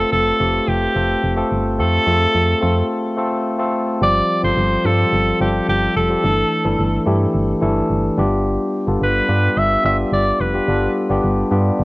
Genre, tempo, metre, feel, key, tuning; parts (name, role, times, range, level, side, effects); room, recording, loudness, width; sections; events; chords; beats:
1980s-style pop; 108 BPM; 4/4; straight; A4 = 440 Hz
bright alto saxophone; melody; 0.0-11.0 s; G4 to E5; -19 LUFS; equal; cassette tape, analog delay
tine electric piano; accompaniment; 0.0-11.8 s; E3 to B4; -19 LUFS; left 1 dB; cassette tape
solid FM bass; bass; 0.0-11.8 s; F1 to G2; -20 LUFS; equal
light reverb, small room ambience; home recording on cassette; -15 LUFS; side -22 dB against mid
0.0-4.0 A section; 4.0-11.8 B section
break 2.9-4.0
0.0 F; 4.0 Fsus2/G; 6.2 Dsus2/G; 8.2 G7
0.12 0.68 1.23 | 1.79 2.34 2.90 3.46 | 4.01 4.57 5.12 5.68 | 6.23 6.79 7.34 7.90 | 8.46 9.01 9.57 10.12 | 10.68 11.23 11.79